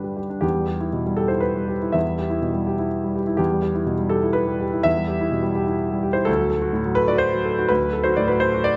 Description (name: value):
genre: neoclassical minimalist piano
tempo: 113-129 BPM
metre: 3/4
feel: rubato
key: E minor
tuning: A4 = 440 Hz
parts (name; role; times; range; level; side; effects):
- clear concert grand piano; solo; 0.0-8.8 s; D2 to E5; -22 LUFS; equal; none
room: light reverb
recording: close, detailed microphones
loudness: -22 LUFS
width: mono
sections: 0.4-8.8 A section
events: none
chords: 0.4 Em; 6.3 D